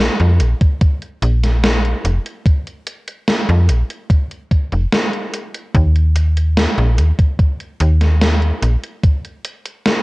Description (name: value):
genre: vaporwave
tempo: 73 BPM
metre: 4/4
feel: straight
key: unclear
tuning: A4 = 440 Hz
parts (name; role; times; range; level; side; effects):
- slap-like FM bass; bass; 0.0-8.8 s; F1 to F2; -13 LUFS; equal; none
- gated 80s digital drum machine; drums; 0.2-10.0 s; hi-hat, snare drum; -18 LUFS; equal; gated reverb, gated reverb snare, vintage 12-bit sampler grit
- electronic kick drum; drums; 0.6-9.2 s; none; -12 LUFS; equal; vintage 12-bit sampler grit
room: little or no reverb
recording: cassette tape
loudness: -14 LUFS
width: side -22 dB against mid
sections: 0.0-10.0 A section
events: none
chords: none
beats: 0.81 1.64 | 2.46 3.28 4.10 4.92 | 5.74 6.57 7.39 8.21 | 9.03 9.85